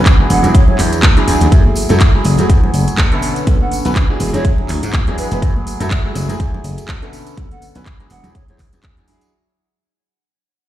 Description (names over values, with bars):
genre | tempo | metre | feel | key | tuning
filtered disco house | 123 BPM | 4/4 | swing 56% on 16ths | unclear | A4 = 440 Hz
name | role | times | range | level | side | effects
clear grand piano | accompaniment | 0.0-9.3 s | D3 to B4 | -19 LUFS | equal | phaser, sidechain pumping
slap bass | bass | 0.0-9.1 s | E1 to B2 | -17 LUFS | equal | sidechain pumping
electronic kick drum | drums | 0.1-8.9 s | none | -12 LUFS | equal | none
house drum kit | drums | 0.1-9.3 s | handclaps, hi-hat | -22 LUFS | right 1 dB | sidechain pumping on hats
tambourine and congas | percussion | 0.1-9.3 s | none | -26 LUFS | right 3 dB | sidechain pumping on perc
breathy mellow jazz flute | melody | 0.3-8.6 s | B4 to F#5 | -24 LUFS | right 1 dB | sidechain pumping, ping-pong delay
room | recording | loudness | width
studio reverb | played on a big sound system in a bare room, large studio reverb | -11 LUFS | side -13 dB against mid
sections
0.0-9.3 A section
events
drop 0.0-9.3; fade-out 1.5-9.3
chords
0.3 E9; 1.5 F#m9; 3.2 Bm9; 4.2 E9; 5.4 F#m9; 7.1 Bm9; 8.1 E9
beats
0.06 0.54 1.03 | 1.52 2.01 2.50 2.98 | 3.47 3.96 4.45 4.93 | 5.42 5.91 6.40 6.88 | 7.37 7.86 8.35 8.84